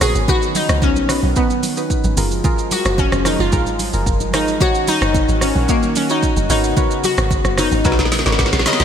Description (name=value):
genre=amapiano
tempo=111 BPM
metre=4/4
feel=straight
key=unclear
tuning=A4 = 440 Hz
part: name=glassy wavetable pluck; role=melody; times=0.0-8.8 s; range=Bb3 to Eb5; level=-20 LUFS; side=left 1 dB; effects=chorus, ping-pong delay
part: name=warm analog pad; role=sustained chords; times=0.0-8.8 s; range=Db3 to Gb4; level=-25 LUFS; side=equal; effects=chorus, sidechain pumping
part: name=deep mellow chord stab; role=stabs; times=0.0-8.8 s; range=Eb4 to Db5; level=-24 LUFS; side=left 1 dB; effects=chorus, ping-pong delay
part: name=deep log drum bass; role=bass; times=0.0-8.8 s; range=F1 to Db2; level=-20 LUFS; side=equal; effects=none
part: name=afro-pop drum kit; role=drums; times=0.0-8.8 s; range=hi-hat, kick drum, rim click, shaker, snare drum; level=-19 LUFS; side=equal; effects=gated reverb
part: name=congas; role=percussion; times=0.0-8.8 s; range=none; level=-28 LUFS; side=right 3 dB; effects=none
room=moderate lush hall reverb, RT60 2.0 s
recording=bright 1980s-style digital production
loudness=-14 LUFS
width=side -8 dB against mid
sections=0.0-8.8 A section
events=drum fill 7.8-8.8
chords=0.3 Db9sus4; 2.2 Gbmaj9; 4.6 Ebm7/Gb; 6.5 Abm11